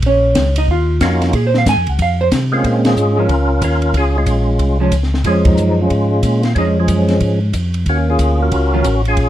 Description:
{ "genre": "soul jazz organ trio", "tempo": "184 BPM", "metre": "4/4", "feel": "swing 63% on 8ths", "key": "Bb minor", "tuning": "A4 = 440 Hz", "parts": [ { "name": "mellow tonewheel organ", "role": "bass", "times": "0.0-9.3 s", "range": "A1 to C3", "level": "-16 LUFS", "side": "equal", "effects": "overdrive, chorus vibrato, slow rotary speaker" }, { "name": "compact cocktail drum kit", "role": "drums", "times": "0.0-9.3 s", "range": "hi-hat, kick drum, ride cymbal, snare drum", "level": "-20 LUFS", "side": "left 1 dB", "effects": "none" }, { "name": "vintage hollow-body jazz guitar", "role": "accompaniment", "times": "0.1-8.8 s", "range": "Eb3 to Ab5", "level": "-17 LUFS", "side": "right 2 dB", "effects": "none" }, { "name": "percussive tonewheel organ", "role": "melody", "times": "1.0-9.3 s", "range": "F3 to Bb4", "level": "-16 LUFS", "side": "equal", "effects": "slow rotary speaker, chorus vibrato, plate reverb" } ], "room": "light reverb", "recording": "dark, warm production", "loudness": "-12 LUFS", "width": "side -12 dB against mid", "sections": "0.0-2.6 A section; 2.6-9.3 B section", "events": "hollow-body jazz guitar solo 0.0-2.6; band accent 2.8, 5.4", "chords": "0.0 Bbm; 0.7 Ebm9; 1.3 Bbm7; 2.0 F5; 2.6 Bbm7; 7.9 Ebm9", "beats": "| 0.03 0.36 0.69 1.01 | 1.34 1.66 1.99 2.32 | 2.64 2.97 3.30 3.62 | 3.95 4.28 4.60 4.93 | 5.25 5.58 5.91 6.24 | 6.56 6.89 7.21 7.54 | 7.87 8.19 8.52 8.85 | 9.17" }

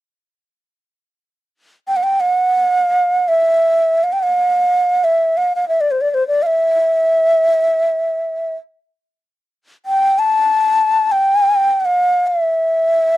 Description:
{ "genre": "arabic", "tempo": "free time", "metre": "none", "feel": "none", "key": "E maqam bayati", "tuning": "A4 = 437 Hz", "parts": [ { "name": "breathy low ney", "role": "melody", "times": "1.9-13.2 s", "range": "C5 to A5", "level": "-13 LUFS", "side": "equal", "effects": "none" } ], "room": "little or no reverb", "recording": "dry, close 1970s-style studio recording", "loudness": "-13 LUFS", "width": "side -15 dB against mid", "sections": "0.9-13.2 A section", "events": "none", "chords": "none", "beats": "free time" }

